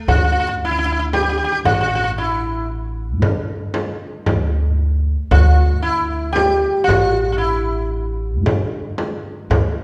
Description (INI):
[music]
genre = Arabic maqam ensemble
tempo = 115 BPM (eighths)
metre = 10/8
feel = straight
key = D maqam rast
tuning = A4 = 440 Hz
[part]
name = sitar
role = melody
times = 0.0-7.9 s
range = A3 to G4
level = -21 LUFS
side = equal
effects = none
[part]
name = upright bass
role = bass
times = 0.1-9.8 s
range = A1 to D3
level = -22 LUFS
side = equal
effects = none
[part]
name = frame drum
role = percussion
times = 0.1-9.7 s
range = none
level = -24 LUFS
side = equal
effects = none
[sound]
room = wet recital hall reverb, RT60 1.6 s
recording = recorded in a church or concert hall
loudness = -18 LUFS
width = mono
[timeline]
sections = 0.0-9.8 A section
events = none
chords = none